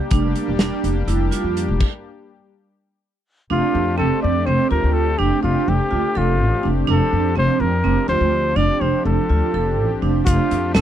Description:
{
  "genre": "progressive instrumental, band music in an uneven meter",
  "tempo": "248 BPM (eighths)",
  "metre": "7/8",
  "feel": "straight",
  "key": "F major",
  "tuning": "A4 = 443 Hz",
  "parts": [
    { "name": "warm analog pad", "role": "accompaniment", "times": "0.0-10.8 s", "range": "F3 to G4", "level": "-26 LUFS", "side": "left 5 dB", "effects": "chorus, tremolo" },
    { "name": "vibraphone with medium hard mallets", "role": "arpeggios", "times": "0.0-10.8 s", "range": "C4 to A4", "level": "-23 LUFS", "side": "right 16 dB", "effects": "none" },
    { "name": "upright bass", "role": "bass", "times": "0.1-10.8 s", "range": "E1 to F2", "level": "-20 LUFS", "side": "left 1 dB", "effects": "none" },
    { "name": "loose indie drum kit", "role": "drums", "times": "0.1-1.9, 10.3-10.8 s", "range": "crash cymbal, hi-hat, kick drum, snare drum", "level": "-19 LUFS", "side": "equal", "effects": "none" },
    { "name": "warm trumpet", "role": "melody", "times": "3.5-10.8 s", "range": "F4 to D5", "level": "-21 LUFS", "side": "left 2 dB", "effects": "none" },
    { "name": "tube shaker", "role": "percussion", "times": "10.3-10.5 s", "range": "none", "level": "-35 LUFS", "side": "left 27 dB", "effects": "none" }
  ],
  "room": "little or no reverb",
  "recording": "dry, close 1970s-style studio recording",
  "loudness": "-16 LUFS",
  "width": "side -10 dB against mid",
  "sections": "0.0-3.5 A section; 3.5-10.8 B section",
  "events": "stop 1.8-3.5",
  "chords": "0.0 Gm; 1.8 N.C.; 3.5 F6",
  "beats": "| 0.11 0.36 0.60 0.84 1.08 1.32 1.57 | 1.81 2.05 2.29 2.54 2.78 3.02 3.26 | 3.50 3.75 3.99 4.23 4.47 4.71 4.96 | 5.20 5.44 5.68 5.92 6.17 6.41 6.65 | 6.89 7.13 7.37 7.61 7.86 8.10 8.34 | 8.58 8.82 9.06 9.30 9.55 9.79 10.03 | 10.27 10.51 10.75"
}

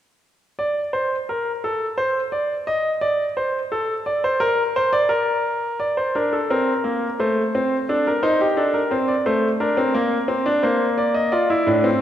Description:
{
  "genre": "classical, baroque-style 3-part fugue for grand piano",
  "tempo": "87 BPM",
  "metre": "4/4",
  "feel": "straight",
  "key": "unclear",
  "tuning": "A4 = 441 Hz",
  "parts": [
    { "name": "bright grand piano", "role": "solo", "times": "0.6-12.0 s", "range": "A2 to Eb5", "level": "-18 LUFS", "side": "equal", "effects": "none" }
  ],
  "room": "wet concert hall reverb, RT60 1.9 s",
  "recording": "recorded in a church or concert hall",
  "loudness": "-18 LUFS",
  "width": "side -11 dB against mid",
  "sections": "0.2-5.8 A section; 5.8-12.0 B section",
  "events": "none",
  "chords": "0.2 N.C.; 5.8 Bbadd9; 7.2 Adim; 8.6 D5; 10.0 Bbadd9; 11.3 Dm",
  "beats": "| 0.24 0.94 1.63 2.32 | 3.02 3.71 4.40 5.10 | 5.80 6.50 7.20 7.89 | 8.58 9.27 9.96 10.64 | 11.33 12.01"
}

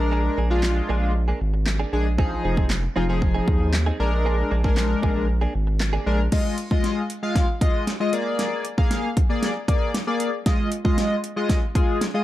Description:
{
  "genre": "dance-pop",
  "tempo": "116 BPM",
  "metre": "4/4",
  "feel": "straight",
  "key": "F dorian",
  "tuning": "A4 = 440 Hz",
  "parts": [
    { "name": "chorused polysynth", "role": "accompaniment", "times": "0.0-12.2 s", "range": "F3 to F5", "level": "-24 LUFS", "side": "left 2 dB", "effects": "sidechain pumping" },
    { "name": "direct-recorded clean electric guitar", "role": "riff", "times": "0.0-6.2 s", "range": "Bb3 to Ab4", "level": "-31 LUFS", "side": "right 4 dB", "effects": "analog chorus" },
    { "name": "saturated sub bass", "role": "bass", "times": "0.0-6.3 s", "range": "F1 to Eb2", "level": "-22 LUFS", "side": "equal", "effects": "sidechain pumping" },
    { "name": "pop drum kit", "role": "drums", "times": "0.6-12.1 s", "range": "crash cymbal, handclaps, hi-hat, kick drum, snare drum", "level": "-22 LUFS", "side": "equal", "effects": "overdrive" }
  ],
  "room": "little or no reverb",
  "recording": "dark, warm production",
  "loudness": "-20 LUFS",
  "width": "side -14 dB against mid",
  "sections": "0.0-6.3 A section; 6.3-12.2 B section",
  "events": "kick muted 5.3-6.3; build-up 6.3-12.2; drum fill 6.3-12.2",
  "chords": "0.0 Bb7; 2.2 Fm7; 4.0 Bb7; 6.3 Fm7; 8.1 Bb7; 10.5 Fm7",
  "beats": "| 0.12 0.63 1.15 1.67 | 2.19 2.70 3.22 3.74 | 4.25 4.77 5.29 5.81 | 6.32 6.84 7.36 7.88 | 8.39 8.91 9.43 9.94 | 10.46 10.98 11.50 12.01"
}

